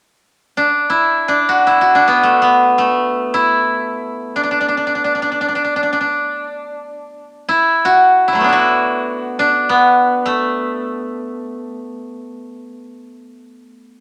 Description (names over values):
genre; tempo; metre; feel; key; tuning
chinese traditional, Chinese solo plucked strings; free time; none; none; D gong mode; A4 = 439 Hz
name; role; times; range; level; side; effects
steel-string zither; solo; 0.6-13.6 s; F#3 to F#4; -16 LUFS; equal; none
room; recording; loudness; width
moderate studio reverb, RT60 0.5 s; none; -15 LUFS; mono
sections
0.0-14.0 A section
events
none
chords
none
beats
free time